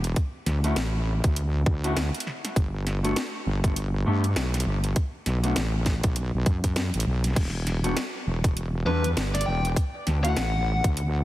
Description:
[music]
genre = glitch hop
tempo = 100 BPM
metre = 4/4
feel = swing 59% on 16ths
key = E dorian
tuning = A4 = 440 Hz
[part]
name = wobble bass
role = bass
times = 0.0-11.2 s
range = E1 to G2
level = -25 LUFS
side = equal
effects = chorus, tube saturation
[part]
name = drum and bass drum kit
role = drums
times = 0.0-11.1 s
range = crash cymbal, hi-hat, snare drum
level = -32 LUFS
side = equal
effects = overdrive, studio reverb
[part]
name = electronic kick drum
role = drums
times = 0.2-10.9 s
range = none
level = -23 LUFS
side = equal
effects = overdrive, studio reverb
[part]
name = mellow electric guitar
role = stabs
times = 0.6-10.4 s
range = G3 to G4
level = -32 LUFS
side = left 1 dB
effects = sidechain pumping, dub echo
[part]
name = biting lead guitar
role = melody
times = 8.9-10.8 s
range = B4 to G5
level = -29 LUFS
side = left 2 dB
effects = overdrive, dub echo
[sound]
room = light reverb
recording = heavily compressed radio sound, multiband compression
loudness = -23 LUFS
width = side -15 dB against mid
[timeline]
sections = 0.0-11.2 A section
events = none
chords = 0.2 D5; 2.6 G; 5.0 B7(no3); 7.4 Em; 9.8 D

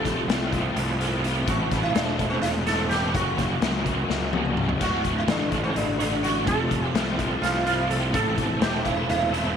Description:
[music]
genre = psychedelic rock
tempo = 252 BPM (eighths)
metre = 7/8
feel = straight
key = unclear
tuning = A4 = 435 Hz
[part]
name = sitar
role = melody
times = 0.0-9.6 s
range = C4 to A4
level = -28 LUFS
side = right 2 dB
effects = tape echo
[part]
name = crunchy overdriven guitar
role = riff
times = 0.0-9.6 s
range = D2 to A4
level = -26 LUFS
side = right 1 dB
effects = rotary speaker
[part]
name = fuzz picked electric bass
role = bass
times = 0.0-9.6 s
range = D1 to C#2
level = -29 LUFS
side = right 1 dB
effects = overdrive
[part]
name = raw garage drum kit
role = drums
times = 0.1-9.4 s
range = crash cymbal, hi-hat, kick drum, snare drum, toms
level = -28 LUFS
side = left 4 dB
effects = none
[sound]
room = light reverb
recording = 1960s-style stereo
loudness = -22 LUFS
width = side -8 dB against mid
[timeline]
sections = 0.0-9.6 A section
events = drum fill 4.1-4.8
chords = 0.0 F; 1.5 Am; 3.1 F#; 4.8 D; 6.5 F; 8.1 Am

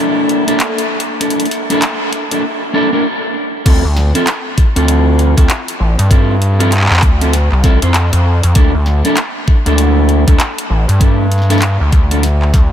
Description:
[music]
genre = glitch hop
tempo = 98 BPM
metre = 4/4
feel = swing 61% on 16ths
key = D minor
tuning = A4 = 439 Hz
[part]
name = clean electric guitar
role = stabs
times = 0.0-12.2 s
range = Bb3 to C5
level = -16 LUFS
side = equal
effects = sidechain pumping, ping-pong delay
[part]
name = dubstep drum kit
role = drums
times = 0.3-12.7 s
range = crash cymbal, handclaps, hi-hat, snare drum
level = -20 LUFS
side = equal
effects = high-pass filter on hats, high-pass filter on snare, high-pass filter on cymbals
[part]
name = electronic kick drum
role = drums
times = 1.2-12.7 s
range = none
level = -10 LUFS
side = equal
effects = high-pass filter on kick
[part]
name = gritty driven synth bass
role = bass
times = 3.7-12.7 s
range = A1 to G2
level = -12 LUFS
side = equal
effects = overdrive
[sound]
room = light reverb, digital ambience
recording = none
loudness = -10 LUFS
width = side -10 dB against mid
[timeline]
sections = 0.0-3.7 A section; 3.7-12.7 B section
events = build-up 0.0-3.7; drop 3.7-12.7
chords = 0.0 Bbmaj7#11; 3.7 Dm7; 8.6 C13 (rootless)

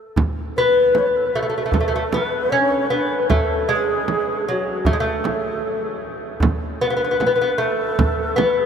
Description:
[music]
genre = Persian modal ensemble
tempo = 77 BPM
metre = 4/4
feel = straight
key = A dastgah mahur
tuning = A4 = 440 Hz
[part]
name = frame drum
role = percussion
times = 0.2-8.6 s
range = none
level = -27 LUFS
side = right 4 dB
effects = none
[part]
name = tombak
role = percussion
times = 0.2-8.6 s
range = none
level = -25 LUFS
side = right 1 dB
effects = none
[part]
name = lute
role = melody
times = 0.6-8.7 s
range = F#3 to C#4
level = -20 LUFS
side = left 1 dB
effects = none
[part]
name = breathy bright low ney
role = second line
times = 0.6-8.7 s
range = G#4 to C#5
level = -24 LUFS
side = left 1 dB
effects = none
[sound]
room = wet huge ambient reverb, RT60 9.3 s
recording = in a vast, echoing space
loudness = -17 LUFS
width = side -7 dB against mid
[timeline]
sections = 0.2-8.7 A section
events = break 0.0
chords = none

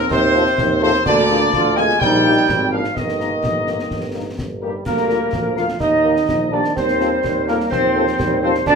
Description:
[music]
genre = military-style march for wind band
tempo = 126 BPM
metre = 2/4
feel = straight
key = Eb major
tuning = A4 = 440 Hz
[part]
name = dark trumpet section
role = melody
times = 0.0-8.8 s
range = G4 to Ab5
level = -22 LUFS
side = left 1 dB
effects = none
[part]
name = clear woodwind section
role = second line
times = 0.0-8.8 s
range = G4 to Ab5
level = -24 LUFS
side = equal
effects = none
[part]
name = dark trombone section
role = sustained chords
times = 0.0-8.8 s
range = Eb3 to F4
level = -25 LUFS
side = equal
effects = none
[part]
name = warm tuba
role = bass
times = 0.0-8.8 s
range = G1 to Eb2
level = -22 LUFS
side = right 2 dB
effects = none
[part]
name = clear euphonium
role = second line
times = 0.1-8.8 s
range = C3 to F4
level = -21 LUFS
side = right 3 dB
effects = none
[part]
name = concert snare drum, concert bass drum and clash cymbals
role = drums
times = 0.1-8.8 s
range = none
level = -27 LUFS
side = left 2 dB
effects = none
[part]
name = clear French horn section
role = accompaniment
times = 0.3-8.5 s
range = Bb3 to Bb4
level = -25 LUFS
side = left 6 dB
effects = none
[part]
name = small flute group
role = second line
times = 4.6-8.8 s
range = G4 to F5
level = -24 LUFS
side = left 4 dB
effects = none
[sound]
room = wet large studio reverb, RT60 0.8 s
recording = minimal, uncompressed stereo recording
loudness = -15 LUFS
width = side -5 dB against mid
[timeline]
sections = 0.0-4.9 A section; 4.9-8.8 A section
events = none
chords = 0.0 F7/Eb; 1.1 Bb7/D; 2.0 Eb/Bb; 2.5 Bb7/Ab; 3.0 Eb/G; 4.9 Bb/D; 5.8 Eb; 6.8 F7/Eb

